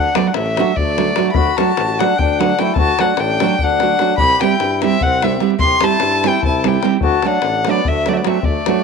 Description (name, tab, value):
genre	balkan folk, Balkan wedding band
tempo	296 BPM (eighths)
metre	7/8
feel	straight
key	D mixolydian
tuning	A4 = 441 Hz
part	dark violin	melody	0.0-8.8 s	D5 to C6	-18 LUFS	equal	tape echo
part	mellow accordion	second line	0.0-8.8 s	A3 to G4	-21 LUFS	left 12 dB	none
part	warm tuba	bass	0.0-8.6 s	A1 to G2	-23 LUFS	left 1 dB	transformer saturation
part	davul	percussion	0.0-8.8 s	none	-20 LUFS	left 5 dB	none
part	nylon-string guitar	accompaniment	0.2-8.8 s	F#3 to G4	-18 LUFS	right 13 dB	none
room	moderate spring reverb, RT60 1.4 s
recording	1960s-style stereo with parts hard left and right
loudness	-13 LUFS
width	side -5 dB against mid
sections	0.0-8.8 A section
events	none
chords	0.0 D; 4.2 C; 7.0 D